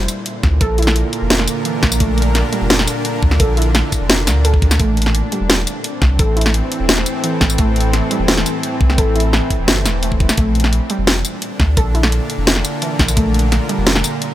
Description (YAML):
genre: half-time drum and bass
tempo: 172 BPM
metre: 4/4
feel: half-time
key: unclear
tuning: A4 = 438 Hz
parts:
  - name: bowed-like drone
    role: sustained chords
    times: 0.0-14.3 s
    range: A2 to Bb4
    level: -22 LUFS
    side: equal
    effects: built-in reverb, sidechain pumping
  - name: warbly dusty pluck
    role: arpeggios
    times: 0.0-14.3 s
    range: E3 to A4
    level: -23 LUFS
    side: right 1 dB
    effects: lush chorus, dub echo
  - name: saturated sub bass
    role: bass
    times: 0.0-14.0 s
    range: E1 to D2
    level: -17 LUFS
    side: equal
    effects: tube saturation
  - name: drum and bass drum kit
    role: drums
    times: 0.1-14.3 s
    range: hi-hat, snare drum, tambourine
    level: -16 LUFS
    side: equal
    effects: none
  - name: electronic kick drum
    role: drums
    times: 0.4-13.2 s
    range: none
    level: -16 LUFS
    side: equal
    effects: none
room: little or no reverb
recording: none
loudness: -13 LUFS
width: side -13 dB against mid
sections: 0.0-14.3 A section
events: none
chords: 0.0 Bb; 4.8 Am; 10.4 Bb